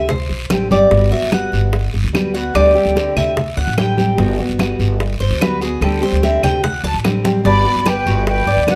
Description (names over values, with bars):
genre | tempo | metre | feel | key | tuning
latin, Cuban son and guajira | 147 BPM | 4/4 | straight | G major | A4 = 440 Hz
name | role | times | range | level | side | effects
fingerpicked steel-string acoustic guitar | accompaniment | 0.0-8.8 s | D3 to G4 | -22 LUFS | equal | none
Cuban tres | arpeggios | 0.0-8.8 s | D4 to A5 | -21 LUFS | equal | none
upright bass | bass | 0.0-8.8 s | G1 to D2 | -21 LUFS | equal | none
bongos | percussion | 0.1-8.8 s | none | -26 LUFS | equal | none
congas | percussion | 0.1-8.8 s | none | -24 LUFS | equal | none
guiro | percussion | 0.1-8.8 s | none | -33 LUFS | equal | none
claves | percussion | 0.5-8.8 s | none | -30 LUFS | equal | none
concert flute | melody | 7.5-8.8 s | F#5 to B5 | -20 LUFS | equal | none
warm studio violin section | second line | 7.5-8.8 s | B4 to D5 | -28 LUFS | equal | none
room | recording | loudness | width
light reverb | none | -16 LUFS | mono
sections
0.0-7.5 A section; 7.5-8.8 B section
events
Cuban tres solo 0.0-7.5; drum fill 7.2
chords
0.0 D7sus4; 0.9 Gmaj7; 2.6 D9sus4; 4.2 Gmaj7; 5.8 D7sus4; 7.5 Gmaj7